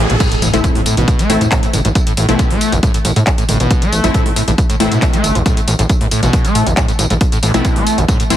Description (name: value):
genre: driving peak-time techno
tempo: 137 BPM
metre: 4/4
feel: straight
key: A minor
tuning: A4 = 436 Hz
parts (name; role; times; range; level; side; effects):
- screaming distorted acid line; riff; 0.0-8.4 s; A1 to A3; -17 LUFS; equal; distortion, wide subtle chorus, sidechain pumping, tape echo
- gritty driven synth bass; bass; 0.0-8.4 s; G1 to A2; -16 LUFS; equal; sidechain pumping
- riser and impact; sound effects; 0.0-2.0 s; none; -22 LUFS; right 1 dB; none
- techno drum kit; drums; 0.1-8.4 s; crash cymbal, handclaps, hi-hat, tambourine; -20 LUFS; equal; none
- electronic kick drum; drums; 0.2-8.2 s; none; -15 LUFS; equal; none
- rave stab; stabs; 0.5-8.4 s; A3 to E4; -19 LUFS; left 2 dB; chorus, built-in reverb, sidechain pumping, tape echo
room: light reverb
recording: heavily compressed radio sound, multiband compression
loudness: -11 LUFS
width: side -11 dB against mid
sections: 0.2-8.4 A section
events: break 0.0; riser 0.0; drop 0.2-8.4; impact 0.2-2.0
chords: 0.2 Am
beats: | 0.20 0.64 1.08 1.52 | 1.95 2.39 2.83 3.27 | 3.71 4.14 4.58 5.02 | 5.46 5.89 6.33 6.77 | 7.21 7.65 8.09